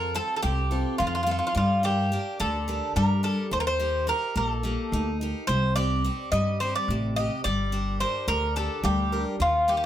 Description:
greek folk, Greek bouzouki band; 214 BPM (eighths); 7/8; straight; A4 = 440 Hz
Greek bouzouki; melody; 0.0-9.8 s; F4 to Eb5; -26 LUFS; equal; plate reverb
picked steel-string acoustic guitar; accompaniment; 0.0-9.9 s; C3 to Bb4; -31 LUFS; left 1 dB
upright bass; bass; 0.0-9.9 s; G1 to G2; -28 LUFS; equal
moderate small room reverb, RT60 0.5 s; -23 LUFS; side -11 dB against mid
0.0-9.9 A section
0.0 F; 1.6 Gm; 3.5 Eb; 5.5 Cm; 7.4 Gm
0.15 0.43 0.71 0.99 1.27 | 1.55 1.83 2.11 2.39 2.67 2.95 3.23 | 3.52 3.80 4.08 4.36 4.64 4.92 5.20 | 5.48 5.76 6.04 6.32 6.60 6.88 7.16 | 7.44 7.72 8.00 8.28 8.56 8.84 9.12 | 9.40 9.68

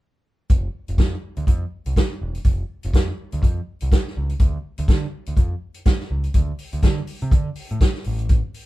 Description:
disco; 123 BPM; 4/4; swing 56% on 16ths; A4 = 442 Hz
overdriven picked electric bass; bass; 0.5-8.4 s; E1 to D3; -26 LUFS; right 1 dB
vintage drum kit; drums; 0.5-8.7 s; hi-hat, kick drum, snare drum; -18 LUFS; equal
moderate small room reverb, RT60 0.5 s; band playing live in one room; -19 LUFS; side -17 dB against mid
0.5-8.7 A section
| 0.50 0.99 1.48 1.96 | 2.45 2.94 3.42 3.91 | 4.40 4.88 5.37 5.86 | 6.35 6.83 7.32 7.81 | 8.30

